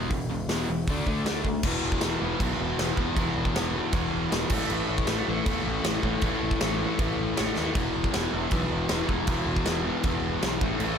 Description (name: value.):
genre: hard rock.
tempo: 157 BPM.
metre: 4/4.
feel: straight.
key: unclear.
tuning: A4 = 439 Hz.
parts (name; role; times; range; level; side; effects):
overdriven electric guitar; riff; 0.0-11.0 s; E2 to D4; -27 LUFS; left 2 dB; none.
fuzz picked electric bass; bass; 0.0-10.9 s; E1 to E2; -33 LUFS; equal; overdrive.
big rock drum kit; drums; 0.1-10.9 s; crash cymbal, hi-hat, kick drum, snare drum; -29 LUFS; right 1 dB; none.
room: studio ambience.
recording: none.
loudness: -24 LUFS.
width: side -7 dB against mid.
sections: 0.0-1.6 A section; 1.6-11.0 B section.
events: drum fill 7.6.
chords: 0.0 E5; 0.9 D5; 1.6 E5; 4.5 A5; 7.8 E5.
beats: | 0.11 0.49 0.88 1.26 | 1.64 2.02 2.41 2.79 | 3.17 3.55 3.93 4.32 | 4.70 5.08 5.46 5.84 | 6.22 6.61 6.99 7.37 | 7.75 8.13 8.52 8.90 | 9.28 9.66 10.04 10.43 | 10.81.